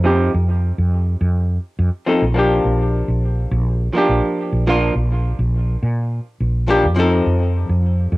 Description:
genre	sunset chillout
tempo	104 BPM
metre	4/4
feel	straight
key	Bb major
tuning	A4 = 445 Hz
part	archtop guitar, miked and amplified	accompaniment	0.0-8.2 s	F3 to A4	-18 LUFS	equal	auto-pan, low-pass filter, cassette tape, analog delay
part	woody fretless electric bass	bass	0.0-8.2 s	Bb1 to Bb2	-17 LUFS	equal	none
room	moderate studio reverb, RT60 0.6 s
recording	home recording on cassette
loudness	-16 LUFS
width	side -20 dB against mid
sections	0.0-8.2 A section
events	none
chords	0.0 F7(no3); 2.4 Bb6; 7.0 F7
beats	| 0.06 0.63 1.21 1.79 | 2.36 2.94 3.52 4.09 | 4.67 5.25 5.83 6.40 | 6.98 7.56 8.13

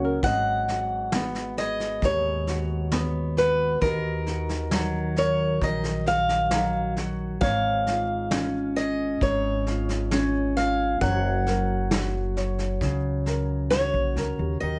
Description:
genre	acoustic folk duo or small band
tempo	67 BPM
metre	4/4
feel	straight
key	G# dorian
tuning	A4 = 442 Hz
part	nylon-string guitar	accompaniment	0.0-14.8 s	G#2 to D#5	-31 LUFS	equal	none
part	upright bass	bass	0.0-14.8 s	F#1 to D#2	-31 LUFS	equal	none
part	picked swing-style acoustic guitar	melody	0.2-14.8 s	A#4 to F#5	-28 LUFS	equal	none
part	vintage brush drum kit	drums	0.2-14.3 s	kick drum, snare drum	-32 LUFS	equal	none
room	moderate studio reverb, RT60 0.5 s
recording	nothing above 10.5 kHz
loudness	-25 LUFS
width	mono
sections	0.2-14.6 A section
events	none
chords	0.2 G#m7; 3.8 D#m; 7.4 C#/G#; 11.0 F#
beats	| 0.23 1.12 2.02 2.92 | 3.82 4.72 5.62 6.52 | 7.42 8.32 9.22 10.12 | 11.02 11.92 12.82 13.72 | 14.62

